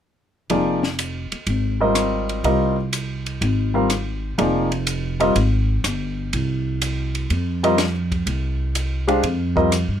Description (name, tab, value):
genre	modal jazz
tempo	124 BPM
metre	4/4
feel	swing 69% on 8ths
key	F dorian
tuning	A4 = 441 Hz
part	warm baby grand piano	accompaniment	0.5-9.7 s	F3 to F5	-19 LUFS	left 1 dB	none
part	upright bass	bass	0.5-10.0 s	F1 to G2	-22 LUFS	equal	none
part	compact cocktail drum kit	drums	0.5-9.9 s	hi-hat, kick drum, ride cymbal, rim click, snare drum	-28 LUFS	equal	none
room	little or no reverb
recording	close, detailed microphones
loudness	-19 LUFS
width	side -9 dB against mid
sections	0.5-10.0 A section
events	none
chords	0.5 Fm9